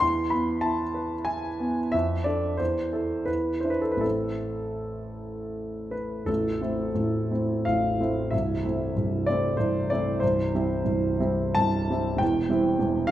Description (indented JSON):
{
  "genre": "classical, romantic character piece for solo piano",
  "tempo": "75-103 BPM",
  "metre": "3/4",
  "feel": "rubato",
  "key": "A minor",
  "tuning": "A4 = 439 Hz",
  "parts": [
    { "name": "warm concert grand piano", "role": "solo", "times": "0.0-13.1 s", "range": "A0 to C6", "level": "-24 LUFS", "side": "equal", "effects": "none" }
  ],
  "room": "wet recital hall reverb, RT60 1.6 s",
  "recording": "none",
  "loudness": "-24 LUFS",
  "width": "side -13 dB against mid",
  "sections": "0.0-6.3 A section; 6.3-13.1 B section",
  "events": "none",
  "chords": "0.0 E; 1.9 Dm/F; 2.6 Am/E; 3.3 E5; 4.0 Am; 8.3 Am/C; 10.2 C; 12.2 C/E"
}